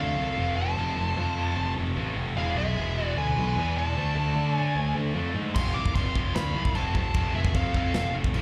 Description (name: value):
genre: heavy metal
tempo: 150 BPM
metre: 4/4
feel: straight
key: unclear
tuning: A4 = 439 Hz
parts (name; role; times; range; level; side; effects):
- high-gain lead guitar; melody; 0.0-8.1 s; E5 to D6; -34 LUFS; equal; distortion, slapback echo
- nasal lead guitar with a parked wah; second line; 0.0-8.1 s; G#4 to F5; -41 LUFS; equal; overdrive, slapback echo, tape echo
- scooped high-gain guitar; riff; 0.0-8.4 s; D3 to A3; -38 LUFS; equal; distortion, slapback echo
- scooped high-gain guitar; riff; 0.0-8.4 s; E2 to D4; -36 LUFS; equal; distortion
- fuzz picked electric bass; bass; 0.0-8.4 s; E1 to D3; -31 LUFS; equal; overdrive
- modern studio drum kit; drums; 5.6-8.4 s; china cymbal, crash cymbal, kick drum, snare drum; -30 LUFS; equal; none
room: small room ambience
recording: live gig heard through the venue's PA, club reverb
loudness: -27 LUFS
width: mono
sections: 0.0-8.4 A section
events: none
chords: 0.0 F; 2.4 E; 4.0 D5; 5.6 F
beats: 0.37 | 0.77 1.17 1.57 1.97 | 2.36 2.76 3.16 3.56 | 3.96 4.36 4.76 5.15 | 5.55 5.95 6.35 6.75 | 7.14 7.54 7.94 8.34